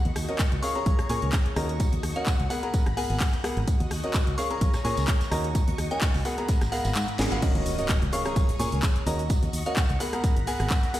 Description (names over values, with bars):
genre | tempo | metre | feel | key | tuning
piano house | 128 BPM | 4/4 | swing 54% on 16ths | Eb minor | A4 = 439 Hz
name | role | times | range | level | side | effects
string machine, violins | sustained chords | 0.0-11.0 s | Gb4 to Db6 | -38 LUFS | equal | ensemble chorus, sidechain pumping
fingered electric bass | bass | 0.1-10.7 s | Ab1 to Bb2 | -29 LUFS | equal | sidechain pumping
house drum kit | drums | 0.1-11.0 s | crash cymbal, handclaps, hi-hat, rim click, shaker, snare drum | -32 LUFS | equal | overdrive
soft-mallet drum kit | drums | 0.2-11.0 s | hi-hat, snare drum, tambourine | -43 LUFS | right 3 dB | high-pass filter on hats, high-pass filter on snare, high-pass filter on perc, high-pass filter on room
clear concert grand piano | riff | 0.3-11.0 s | Cb4 to Bb5 | -32 LUFS | equal | sidechain pumping, tape echo
electronic kick drum | drums | 0.4-10.8 s | none | -24 LUFS | equal | overdrive
glassy synth bell | melody | 0.6-11.0 s | Gb5 to Db6 | -34 LUFS | left 2 dB | chorus, tape echo
impact | sound effects | 7.4-9.3 s | none | -36 LUFS | equal | none
room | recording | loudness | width
light reverb | played on a big sound system in a bare room, stone room reverb | -23 LUFS | side -14 dB against mid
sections
0.0-7.4 A section; 7.4-11.0 B section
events
kick drops out 7.0-7.4; drum fill 7.2; band accent 7.2; drop 7.4-11.0; impact 7.4-9.3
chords
0.0 Ebm7; 0.6 Bbm7; 1.6 Ebm7; 2.5 Abm9; 3.7 Ebm7; 4.4 Bbm7; 5.3 Ebm7; 6.3 Abm9; 7.4 Ebm7; 8.1 Bbm7; 9.1 Ebm7; 10.0 Abm9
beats
0.39 0.86 1.33 | 1.80 2.27 2.74 3.21 | 3.67 4.14 4.61 5.08 | 5.55 6.02 6.49 6.96 | 7.42 7.89 8.36 8.83 | 9.30 9.77 10.24 10.71